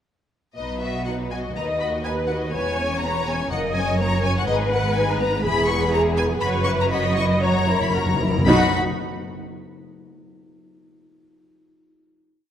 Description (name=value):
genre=quick classical-period movement for symphony orchestra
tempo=121 BPM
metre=4/4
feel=uneven beats, rubato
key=B major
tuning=A4 = 439 Hz
part: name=clear studio violin section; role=melody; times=0.6-8.8 s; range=D#5 to C#6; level=-27 LUFS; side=left 4 dB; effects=none
part: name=warm studio violin section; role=second line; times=0.6-8.8 s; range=A#3 to F#5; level=-27 LUFS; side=left 3 dB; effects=none
part: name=rich studio cello section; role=bass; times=0.6-8.8 s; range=D#2 to B2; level=-26 LUFS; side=right 2 dB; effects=none
part: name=warm studio double bass section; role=bass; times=0.6-8.8 s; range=E1 to D#2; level=-28 LUFS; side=right 2 dB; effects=none
part: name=warm studio viola section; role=accompaniment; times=1.5-8.8 s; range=F#3 to D#5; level=-24 LUFS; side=equal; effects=none
part: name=timpani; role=percussion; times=3.5-4.2, 7.4-8.7 s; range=F#2 to B2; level=-28 LUFS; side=left 2 dB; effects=none
room=moderate scoring stage reverb, RT60 1.9 s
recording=none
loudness=-19 LUFS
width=side -9 dB against mid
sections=0.6-8.5 A section; 8.5-10.5 final chord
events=slowing down 3.5-8.5; timpani fill 7.4-8.5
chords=0.6 B; 1.6 B/D#; 2.5 C#m7/E; 3.5 F#; 4.5 G#m; 5.4 E; 6.4 F#7sus4; 7.4 F#7; 8.5 B